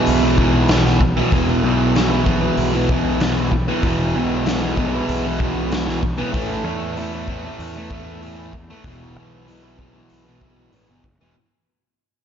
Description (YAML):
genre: rock, shoegaze and dream pop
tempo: 96 BPM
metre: 4/4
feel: straight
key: unclear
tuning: A4 = 440 Hz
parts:
  - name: fuzz guitar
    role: riff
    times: 0.0-11.3 s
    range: E2 to A3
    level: -19 LUFS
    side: equal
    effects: distortion, wide subtle chorus
  - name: fuzz picked electric bass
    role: bass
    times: 0.1-11.3 s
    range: E1 to E2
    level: -24 LUFS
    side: equal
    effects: overdrive
  - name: raw garage drum kit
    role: drums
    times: 0.1-11.2 s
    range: hi-hat, kick drum, snare drum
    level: -23 LUFS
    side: equal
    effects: none
room: moderate lush hall reverb, RT60 1.9 s, small room ambience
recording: nothing above 7.5 kHz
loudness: -16 LUFS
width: side -8 dB against mid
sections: 0.0-11.4 A section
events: fade-out 0.0-11.4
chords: 0.0 E5; 6.3 A5; 8.8 E5